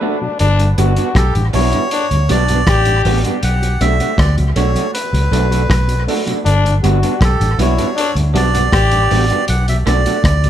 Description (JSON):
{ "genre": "roots reggae", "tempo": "79 BPM", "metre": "4/4", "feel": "straight", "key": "unclear", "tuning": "A4 = 440 Hz", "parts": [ { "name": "growling trombone", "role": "second line", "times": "0.0-9.3 s", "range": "D4 to G4", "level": "-21 LUFS", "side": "left 6 dB", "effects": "dub echo" }, { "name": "electric guitar through a small old amp", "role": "accompaniment", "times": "0.0-10.2 s", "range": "A3 to F#4", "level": "-22 LUFS", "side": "right 6 dB", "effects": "spring reverb, dub echo" }, { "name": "mellow tonewheel organ", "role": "accompaniment", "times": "0.0-10.5 s", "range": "G2 to F#4", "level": "-25 LUFS", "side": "left 2 dB", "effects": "chorus vibrato, slow rotary speaker, dub echo" }, { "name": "vintage muted fingered electric bass", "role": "bass", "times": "0.4-10.5 s", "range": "G1 to D2", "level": "-14 LUFS", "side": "equal", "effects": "none" }, { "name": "vintage drum kit", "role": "drums", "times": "0.4-10.5 s", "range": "hi-hat, kick drum, rim click", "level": "-20 LUFS", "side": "equal", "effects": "dub echo" }, { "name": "melodica", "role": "melody", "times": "1.2-10.5 s", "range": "A4 to F#5", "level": "-21 LUFS", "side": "right 3 dB", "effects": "dub echo" } ], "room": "moderate studio reverb, RT60 0.6 s", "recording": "none", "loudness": "-12 LUFS", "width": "side -11 dB against mid", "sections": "0.4-10.5 A section", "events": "break 0.0-0.4; band accent 0.0-0.4", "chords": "0.4 Gmaj7; 3.4 Bm7; 6.5 Gmaj7; 9.5 Bm7", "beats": "| 0.40 1.15 1.91 2.67 | 3.42 4.18 4.94 5.70 | 6.45 7.21 7.97 8.72 | 9.48 10.24" }